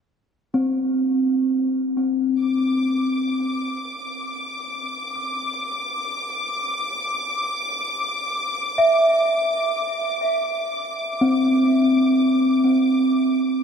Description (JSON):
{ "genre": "ambient", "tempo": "free time", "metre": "none", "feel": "none", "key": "unclear", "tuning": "A4 = 440 Hz", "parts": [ { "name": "celesta", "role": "arpeggios", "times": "0.5-13.6 s", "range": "C4 to D6", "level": "-19 LUFS", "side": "equal", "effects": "tape echo" }, { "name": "dark studio violin section", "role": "texture", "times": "2.4-13.6 s", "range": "D6", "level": "-26 LUFS", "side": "left 2 dB", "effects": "none" } ], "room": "wet huge ambient reverb, RT60 7.5 s", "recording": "in a vast, echoing space", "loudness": "-19 LUFS", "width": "side -7 dB against mid", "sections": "0.0-2.4 A section; 2.4-13.6 B section", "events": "fade-in on celesta 2.4-13.6", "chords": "0.0 N.C.; 8.1 Cadd9" }